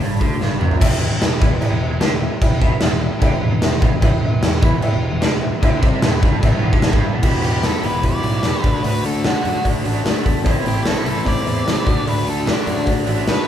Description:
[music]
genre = classic rock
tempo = 149 BPM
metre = 4/4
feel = straight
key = E minor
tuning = A4 = 438 Hz
[part]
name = overdriven electric guitar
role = riff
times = 0.0-13.5 s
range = E2 to F#4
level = -26 LUFS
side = left 6 dB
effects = none
[part]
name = raw garage guitar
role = riff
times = 0.0-13.5 s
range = E2 to G4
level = -26 LUFS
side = right 3 dB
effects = overdrive, harmonic tremolo
[part]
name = fuzz picked electric bass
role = bass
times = 0.0-13.4 s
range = E1 to F#2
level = -24 LUFS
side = equal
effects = overdrive
[part]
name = big rock drum kit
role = drums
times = 0.0-13.4 s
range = crash cymbal, hi-hat, kick drum, snare drum, toms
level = -17 LUFS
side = equal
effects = none
[part]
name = warm upright piano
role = accompaniment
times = 0.8-13.4 s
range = C4 to B5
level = -27 LUFS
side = equal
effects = none
[part]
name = cowbell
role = percussion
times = 0.8-13.4 s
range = none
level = -35 LUFS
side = equal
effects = none
[part]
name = octave-fuzz lead guitar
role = melody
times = 7.4-13.5 s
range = D4 to D5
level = -25 LUFS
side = equal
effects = distortion
[sound]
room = light reverb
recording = band playing live in one room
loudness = -15 LUFS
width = side -10 dB against mid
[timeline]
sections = 0.8-7.2 A section; 7.2-13.5 B section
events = drum fill 0.4-0.8; upright piano fill 3.2-4.0, 6.4-7.2; lead electric guitar solo 7.2-13.5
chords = 0.0 N.C.; 0.8 Em; 7.2 Emadd9; 8.6 D; 10.4 Am; 11.9 D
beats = 0.01 0.41 | 0.81 1.21 1.62 2.02 | 2.42 2.82 3.22 3.62 | 4.02 4.42 4.83 5.23 | 5.63 6.03 6.43 6.83 | 7.23 7.63 8.03 8.44 | 8.84 9.24 9.64 10.05 | 10.45 10.85 11.25 11.66 | 12.06 12.46 12.87 13.27

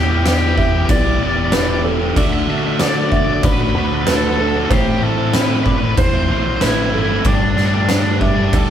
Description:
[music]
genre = post-rock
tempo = 94 BPM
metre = 4/4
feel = straight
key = unclear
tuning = A4 = 441 Hz
[part]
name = overdriven electric guitar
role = melody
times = 0.0-8.7 s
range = D4 to E5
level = -22 LUFS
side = left 1 dB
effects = none
[part]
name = felt-muted upright piano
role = arpeggios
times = 0.0-8.7 s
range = C4 to E5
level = -24 LUFS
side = right 4 dB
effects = none
[part]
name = sludgy distorted guitar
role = riff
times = 0.0-8.7 s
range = A2 to G4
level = -22 LUFS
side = left 5 dB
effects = overdrive
[part]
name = sludgy distorted guitar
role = riff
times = 0.0-8.7 s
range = A2 to G4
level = -24 LUFS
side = right 6 dB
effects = overdrive
[part]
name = growling fingered electric bass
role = bass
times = 0.0-8.7 s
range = E1 to D3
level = -20 LUFS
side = equal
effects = overdrive
[part]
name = oversized low-tuned drum kit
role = drums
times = 0.3-8.7 s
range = crash cymbal, kick drum, snare drum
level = -18 LUFS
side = equal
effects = none
[sound]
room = light reverb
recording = band playing live in one room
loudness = -14 LUFS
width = side -9 dB against mid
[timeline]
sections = 0.0-8.7 A section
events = none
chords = 0.0 Em7; 2.2 D5; 4.7 Am; 7.3 Gsus2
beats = 0.26 0.90 1.53 | 2.16 2.80 3.43 4.07 | 4.71 5.34 5.98 6.62 | 7.25 7.89 8.53

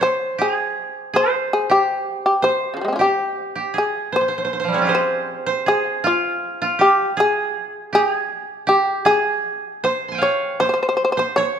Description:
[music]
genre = japanese traditional, Japanese chamber music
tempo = 80 BPM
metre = 2/4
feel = rubato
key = C miyako bushi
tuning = A4 = 440 Hz
[part]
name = shamisen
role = melody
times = 0.0-11.6 s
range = Db3 to Db5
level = -19 LUFS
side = left 1 dB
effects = none
[part]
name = koto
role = second line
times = 0.0-11.6 s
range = F3 to C6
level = -21 LUFS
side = right 4 dB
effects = none
[sound]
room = moderate recital hall reverb, RT60 1.8 s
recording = minimal, uncompressed stereo recording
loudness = -17 LUFS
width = side -8 dB against mid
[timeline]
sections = 0.0-4.1 A section; 4.1-11.6 B section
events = none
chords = none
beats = 0.38 | 1.13 1.87 | 2.61 3.37 | 4.14 4.91 | 5.67 6.43 | 7.18 7.92 | 8.67 9.44 | 10.22 10.99

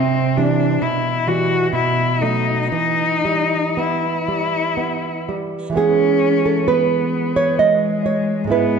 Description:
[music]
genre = romantic duo for cello and classical guitar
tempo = 56-68 BPM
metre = 3/4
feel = rubato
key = E minor, E major from 5.8 s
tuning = A4 = 441 Hz
[part]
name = rich cello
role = melody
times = 0.0-8.8 s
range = G#3 to F#4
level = -20 LUFS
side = left 5 dB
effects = none
[part]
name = nylon-string guitar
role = accompaniment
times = 0.0-8.8 s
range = G#2 to D#5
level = -18 LUFS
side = right 5 dB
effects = none
[sound]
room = moderate scoring stage reverb, RT60 2.1 s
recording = dark, warm production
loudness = -16 LUFS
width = side -6 dB against mid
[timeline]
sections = 0.0-5.8 A section; 5.8-8.8 B section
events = none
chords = 0.0 C; 0.8 Em/B; 1.7 B7; 2.7 Em; 5.8 E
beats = 0.83 1.74 | 2.72 3.78 4.78 | 5.78 6.69 7.60 | 8.53

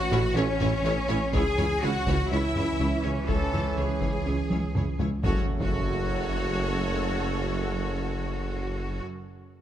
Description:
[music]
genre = cinematic, hybrid orchestral and electronic film score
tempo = 123 BPM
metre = 4/4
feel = straight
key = F# minor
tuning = A4 = 440 Hz
[part]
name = rich symphonic violin section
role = second line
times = 0.0-9.0 s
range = C#5 to A5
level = -38 LUFS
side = left 4 dB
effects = none
[part]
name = clear trombone section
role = sustained chords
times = 0.0-8.6 s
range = C#3 to C#4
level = -37 LUFS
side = right 4 dB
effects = none
[part]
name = dark French horn section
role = sustained chords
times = 0.0-8.6 s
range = F#3 to A4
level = -35 LUFS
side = left 2 dB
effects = none
[part]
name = deep rumbling drone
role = sustained chords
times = 0.0-8.7 s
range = E3 to C#5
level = -40 LUFS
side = right 4 dB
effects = none
[part]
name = round analog bass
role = riff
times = 0.0-5.1 s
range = C#2 to A3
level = -36 LUFS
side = right 1 dB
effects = none
[part]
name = bright symphonic cello section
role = bass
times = 0.0-9.0 s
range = C#4 to A4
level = -32 LUFS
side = equal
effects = none
[part]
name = saturated sub bass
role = bass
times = 0.0-9.0 s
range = F#1 to C#2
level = -34 LUFS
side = left 1 dB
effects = none
[part]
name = warm symphonic violin section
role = melody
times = 0.1-9.0 s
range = C#5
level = -41 LUFS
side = left 3 dB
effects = none
[part]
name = rich symphonic viola section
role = accompaniment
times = 0.1-9.0 s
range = C#4 to A4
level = -38 LUFS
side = left 1 dB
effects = none
[part]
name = thumb-piano-like synth pluck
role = arpeggios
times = 0.1-5.1 s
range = C#3 to A4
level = -36 LUFS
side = left 2 dB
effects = chorus, digital delay
[part]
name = clear symphonic double bass section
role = bass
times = 0.1-9.0 s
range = A1 to F#2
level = -34 LUFS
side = right 2 dB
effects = none
[part]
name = warm tuba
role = bass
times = 0.1-9.0 s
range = F#1 to C#2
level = -34 LUFS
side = right 4 dB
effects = none
[part]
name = solo taiko drums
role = drums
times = 0.1-6.2 s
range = none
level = -32 LUFS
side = left 1 dB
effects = none
[part]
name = impact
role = sound effects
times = 5.2-7.2 s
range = none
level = -33 LUFS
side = equal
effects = none
[sound]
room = moderate concert hall reverb, RT60 2.3 s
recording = none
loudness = -24 LUFS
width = side -11 dB against mid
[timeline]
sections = 0.0-5.2 A section; 5.2-9.1 B section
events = drum fill 4.5-5.2; impact 5.2-7.2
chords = 0.0 A; 1.3 C#m; 5.2 F#m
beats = 0.36 0.85 | 1.34 1.83 2.32 2.80 | 3.29 3.78 4.27 4.75 | 5.24 5.73 6.22 6.71 | 7.19 7.68 8.17 8.66

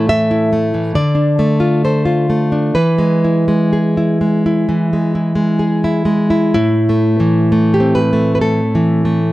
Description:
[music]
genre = romantic piece for solo classical guitar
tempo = 61-71 BPM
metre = 4/4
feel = rubato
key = A minor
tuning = A4 = 440 Hz
[part]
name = nylon-string guitar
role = solo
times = 0.0-9.3 s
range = A2 to E5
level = -12 LUFS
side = equal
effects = none
[sound]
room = light reverb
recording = dark, warm production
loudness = -12 LUFS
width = side -17 dB against mid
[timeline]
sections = 0.0-6.6 A section; 6.6-9.3 B section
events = none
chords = 0.0 A5; 1.0 Dm; 2.7 E; 6.6 Am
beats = 0.11 0.95 1.83 | 2.74 3.71 4.68 5.61 | 6.56 7.53 8.45

